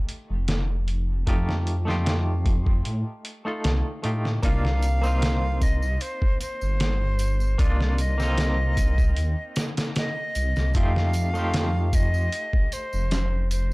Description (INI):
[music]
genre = trip hop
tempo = 76 BPM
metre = 4/4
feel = straight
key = C dorian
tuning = A4 = 440 Hz
[part]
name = semi-hollow electric guitar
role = accompaniment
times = 0.0-13.7 s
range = A3 to A4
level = -32 LUFS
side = equal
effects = tremolo, tape echo
[part]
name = trip hop sampler-style drum kit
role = drums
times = 0.1-13.7 s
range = hi-hat, kick drum, snare drum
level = -25 LUFS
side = equal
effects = none
[part]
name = dark detuned saw bass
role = bass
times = 0.3-13.7 s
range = F1 to A2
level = -23 LUFS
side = equal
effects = tube saturation
[part]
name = breathy bright jazz flute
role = melody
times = 4.4-13.7 s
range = C5 to F5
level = -31 LUFS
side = equal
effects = tape echo
[part]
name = tambourine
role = percussion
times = 4.4-13.7 s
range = none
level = -42 LUFS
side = right 1 dB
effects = none
[sound]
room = little or no reverb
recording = dry, gritty hardware recording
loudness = -22 LUFS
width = side -25 dB against mid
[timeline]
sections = 0.0-13.7 A section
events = none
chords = 0.0 F9; 4.4 Cm11; 10.7 F9